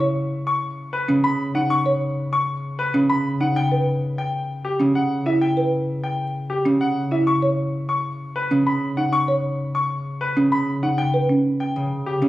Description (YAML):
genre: classical, minimalist pattern music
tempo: 194 BPM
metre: 6/4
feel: straight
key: unclear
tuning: A4 = 440 Hz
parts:
  - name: bright concert grand piano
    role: melody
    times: 0.0-12.3 s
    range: G4 to C#6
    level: -24 LUFS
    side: left 2 dB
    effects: none
  - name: folk marimba with soft mallets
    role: arpeggios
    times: 0.0-12.3 s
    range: C#4 to C#5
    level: -21 LUFS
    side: right 2 dB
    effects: none
  - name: concert harp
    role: accompaniment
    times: 1.1-12.3 s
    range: C#3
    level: -26 LUFS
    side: left 1 dB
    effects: none
room: light reverb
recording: recorded on a phone in the room, club reverb, compression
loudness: -19 LUFS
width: side -15 dB against mid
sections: 0.0-12.3 A section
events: none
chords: 0.0 N.C.; 11.0 Em (rootless)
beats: 0.16 0.47 0.78 1.09 1.40 | 1.71 2.02 2.32 2.63 2.94 3.25 | 3.56 3.87 4.18 4.49 4.80 5.11 | 5.42 5.73 6.04 6.34 6.65 6.96 | 7.27 7.58 7.89 8.20 8.51 8.82 | 9.13 9.44 9.75 10.06 10.37 10.67 | 10.98 11.29 11.60 11.91 12.22